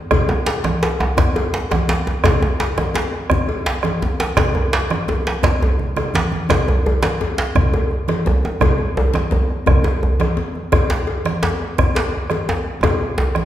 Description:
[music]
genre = west african traditional, West African drum ensemble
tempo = 113 BPM (dotted quarters)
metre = 12/8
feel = straight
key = none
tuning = none
[part]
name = bombo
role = percussion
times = 0.1-13.4 s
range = none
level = -22 LUFS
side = right 1 dB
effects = none
[part]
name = congas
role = percussion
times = 0.1-13.4 s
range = none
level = -25 LUFS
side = right 3 dB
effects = none
[part]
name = cowbell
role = percussion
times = 0.1-13.3 s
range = none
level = -26 LUFS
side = left 3 dB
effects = none
[part]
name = djembe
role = percussion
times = 0.1-13.4 s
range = none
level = -24 LUFS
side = left 2 dB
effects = none
[part]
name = djembe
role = percussion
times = 0.3-13.3 s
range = none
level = -20 LUFS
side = right 1 dB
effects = none
[sound]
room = wet recital hall reverb, RT60 1.7 s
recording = recorded in a church or concert hall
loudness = -16 LUFS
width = side -12 dB against mid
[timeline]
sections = 0.0-13.4 A section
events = drum fill 5.8-6.5, 12.8-13.4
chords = none

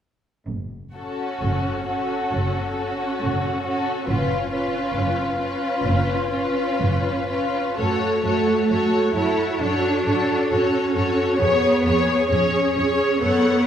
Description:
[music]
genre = classical, slow romantic movement for string orchestra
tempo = 66 BPM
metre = 4/4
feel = uneven beats, rubato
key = F# minor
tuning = A4 = 440 Hz
[part]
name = warm symphonic cello section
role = bass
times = 0.5-13.7 s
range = F#2 to E4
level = -24 LUFS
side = right 2 dB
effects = none
[part]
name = warm symphonic double bass section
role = bass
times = 0.5-13.3 s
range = F#1 to F#2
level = -27 LUFS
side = right 1 dB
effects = none
[part]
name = warm symphonic violin section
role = second line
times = 0.9-13.7 s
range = E#4 to C#5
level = -24 LUFS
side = left 2 dB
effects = none
[part]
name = warm symphonic violin section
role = melody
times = 1.0-13.7 s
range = A4 to F#5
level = -28 LUFS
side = left 5 dB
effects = none
[part]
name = warm symphonic viola section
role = accompaniment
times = 1.0-13.7 s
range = C#4 to A4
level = -25 LUFS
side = right 1 dB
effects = none
[sound]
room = wet scoring stage reverb, RT60 1.6 s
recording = recorded in a church or concert hall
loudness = -19 LUFS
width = side -9 dB against mid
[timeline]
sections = 0.5-7.8 A section; 7.8-13.7 B section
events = none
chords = 0.5 F#m; 11.4 C#7/E#

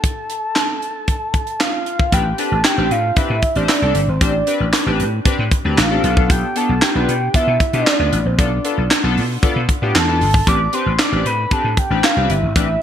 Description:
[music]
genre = early-eighties boogie funk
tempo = 115 BPM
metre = 4/4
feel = straight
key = A minor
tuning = A4 = 437 Hz
[part]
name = mellow horn-like synth lead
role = melody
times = 0.0-12.8 s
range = C5 to D6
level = -21 LUFS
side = right 1 dB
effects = chorus
[part]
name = tight funk drum kit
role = drums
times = 0.0-12.7 s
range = handclaps, hi-hat, kick drum, snare drum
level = -17 LUFS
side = equal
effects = gated reverb
[part]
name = chorused polysynth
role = accompaniment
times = 2.1-12.7 s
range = B3 to C5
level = -22 LUFS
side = left 3 dB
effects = none
[part]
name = vintage slap bass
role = bass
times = 2.1-12.7 s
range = G1 to B2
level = -19 LUFS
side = equal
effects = none
[sound]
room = light reverb, small room ambience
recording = bright 1980s-style digital production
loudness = -14 LUFS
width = side -9 dB against mid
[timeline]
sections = 0.0-2.1 A section; 2.1-12.8 B section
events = none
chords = 0.0 N.C.; 2.1 Am11; 6.0 Bm7b5; 10.5 Am11

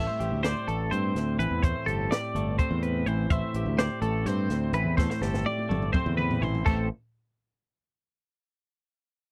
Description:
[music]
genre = math rock and midwest emo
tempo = 251 BPM (eighths)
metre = 7/8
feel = straight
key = A minor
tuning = A4 = 440 Hz
[part]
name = twelve-string electric guitar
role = accompaniment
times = 0.0-6.9 s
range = A2 to D5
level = -34 LUFS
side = equal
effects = none
[part]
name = twelve-string electric guitar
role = arpeggios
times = 0.0-6.9 s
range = A4 to E5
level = -34 LUFS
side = equal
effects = vibrato effect
[part]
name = growling fingered electric bass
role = bass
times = 0.0-6.9 s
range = G1 to G2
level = -31 LUFS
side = equal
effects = overdrive
[part]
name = compact cocktail drum kit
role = drums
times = 0.2-6.8 s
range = crash cymbal, hi-hat, kick drum, snare drum, toms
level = -31 LUFS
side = equal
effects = none
[sound]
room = little or no reverb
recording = dry, close 1970s-style studio recording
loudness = -27 LUFS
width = mono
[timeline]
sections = 0.0-6.7 A section; 6.7-8.3 B section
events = drum fill 5.0-6.7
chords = 0.0 Am7

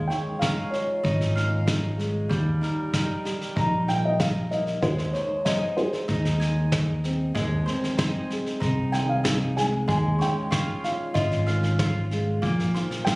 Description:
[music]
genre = acoustic folk duo or small band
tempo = 95 BPM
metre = 4/4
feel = straight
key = unclear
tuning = A4 = 440 Hz
[part]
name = felt-muted upright piano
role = melody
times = 0.0-13.2 s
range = C5 to Bb5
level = -28 LUFS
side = equal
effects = none
[part]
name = fingerpicked steel-string acoustic guitar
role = accompaniment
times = 0.0-13.2 s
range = Eb2 to Ab4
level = -31 LUFS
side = equal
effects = none
[part]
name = mandolin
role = arpeggios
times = 0.0-13.2 s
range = G3 to Ab5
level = -33 LUFS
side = right 1 dB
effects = none
[part]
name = fingered electric bass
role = bass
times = 0.0-12.7 s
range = Ab1 to Eb2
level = -25 LUFS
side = equal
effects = none
[part]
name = vintage brush drum kit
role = drums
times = 0.1-13.2 s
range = kick drum, snare drum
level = -28 LUFS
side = equal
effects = none
[sound]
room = light reverb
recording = recorded on a phone in the room, club reverb, compression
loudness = -22 LUFS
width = side -24 dB against mid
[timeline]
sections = 0.0-13.2 A section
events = felt piano solo 0.0-13.2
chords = 0.0 Db/Eb; 2.3 Eb; 4.8 Ab/Eb; 7.3 Fm7 (rootless); 9.9 Db/Eb; 12.4 Bbsus2

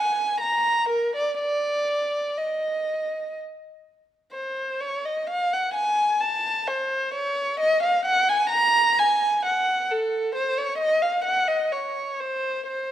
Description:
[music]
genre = classical, baroque-style suite movement for unaccompanied violin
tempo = 61-67 BPM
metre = 3/4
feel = rubato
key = unclear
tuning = A4 = 443 Hz
[part]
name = warm violin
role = solo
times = 0.0-12.9 s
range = A4 to Bb5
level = -22 LUFS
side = equal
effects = none
[sound]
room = moderate recital hall reverb, RT60 1.4 s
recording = none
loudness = -21 LUFS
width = side -11 dB against mid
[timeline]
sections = 0.0-12.9 A section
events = none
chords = none

